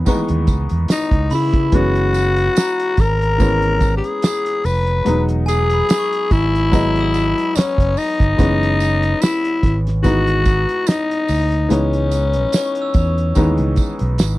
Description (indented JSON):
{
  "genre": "lush 1970s-style soul",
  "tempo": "72 BPM",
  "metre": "4/4",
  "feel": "swing 54% on 16ths",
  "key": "unclear",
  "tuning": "A4 = 440 Hz",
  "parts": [
    { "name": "clear concert grand piano", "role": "accompaniment", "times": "0.0-14.4 s", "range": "D#3 to D#5", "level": "-23 LUFS", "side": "left 1 dB", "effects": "none" },
    { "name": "fingered electric bass", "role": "bass", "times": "0.0-14.4 s", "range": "E1 to C#3", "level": "-18 LUFS", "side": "right 1 dB", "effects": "none" },
    { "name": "cloth-damped thuddy drum kit", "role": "drums", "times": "0.1-14.4 s", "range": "hi-hat, kick drum, snare drum", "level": "-17 LUFS", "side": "right 1 dB", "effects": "none" },
    { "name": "tambourine", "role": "percussion", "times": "0.1-14.4 s", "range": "none", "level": "-33 LUFS", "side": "right 22 dB", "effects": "none" },
    { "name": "glockenspiel with brass mallets", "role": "texture", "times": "0.1-14.4 s", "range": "G#5 to E6", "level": "-31 LUFS", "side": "right 3 dB", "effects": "none" },
    { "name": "raspy tenor saxophone", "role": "melody", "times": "0.9-14.2 s", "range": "C#4 to B4", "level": "-18 LUFS", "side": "left 2 dB", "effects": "none" }
  ],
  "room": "little or no reverb",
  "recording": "dry, close 1970s-style studio recording",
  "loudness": "-14 LUFS",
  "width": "side -18 dB against mid",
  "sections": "0.0-14.4 A section",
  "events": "none",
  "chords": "0.0 C#m9; 1.7 F#9sus4; 5.1 Emaj7; 8.4 F#9sus4; 11.7 C#m9"
}